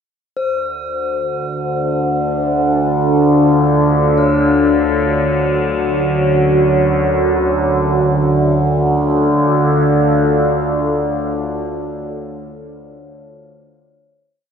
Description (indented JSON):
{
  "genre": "dark ambient drone",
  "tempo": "free time",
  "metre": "none",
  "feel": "none",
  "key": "unclear",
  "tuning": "A4 = 440 Hz",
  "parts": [
    { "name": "deep dark ambient pad", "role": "sustained chords", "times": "1.8-12.0 s", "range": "D4 to A#5", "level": "-17 LUFS", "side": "equal", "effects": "chorus, built-in reverb" },
    { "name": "overtone-sweeping drone", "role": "drone", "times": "1.1-11.6 s", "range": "D2 to D3", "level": "-16 LUFS", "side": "right 1 dB", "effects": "chorus, built-in reverb" },
    { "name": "bronze singing bowl", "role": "texture", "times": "0.4-8.0 s", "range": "C5 to C#5", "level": "-24 LUFS", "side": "left 3 dB", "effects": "none" }
  ],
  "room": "wet plate reverb, RT60 3.4 s",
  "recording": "none",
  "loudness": "-13 LUFS",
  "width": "side -7 dB against mid",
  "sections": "0.4-8.0 A section; 8.0-11.8 final chord",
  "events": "none",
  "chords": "0.4 Dm; 4.2 F#; 8.0 Dm"
}